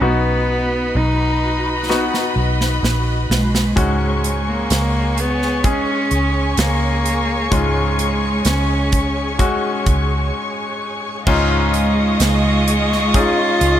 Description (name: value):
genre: pop ballad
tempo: 64 BPM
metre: 4/4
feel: straight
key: unclear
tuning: A4 = 441 Hz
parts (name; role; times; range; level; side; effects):
- warm cello; melody; 0.0-13.8 s; G#3 to E#4; -20 LUFS; right 1 dB; none
- bright concert grand piano; accompaniment; 0.0-13.8 s; G#2 to G#4; -22 LUFS; left 2 dB; none
- rich studio string section; sustained chords; 0.0-13.8 s; F#4 to C#6; -24 LUFS; left 2 dB; none
- vintage muted fingered electric bass; bass; 0.0-13.8 s; A#1 to C#2; -20 LUFS; equal; none
- modern studio drum kit; drums; 1.9-13.8 s; crash cymbal, hi-hat, kick drum, snare drum; -21 LUFS; right 1 dB; none
- warm studio violin section; second line; 11.3-13.8 s; G#3 to D#5; -22 LUFS; right 2 dB; digital delay
room: light reverb, small room ambience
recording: none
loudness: -15 LUFS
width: side -11 dB against mid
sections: 0.0-11.3 A section; 11.3-13.8 B section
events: drum fill 1.9-3.8; break 10.3-11.3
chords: 0.0 B; 3.8 C#sus4; 11.3 C#add9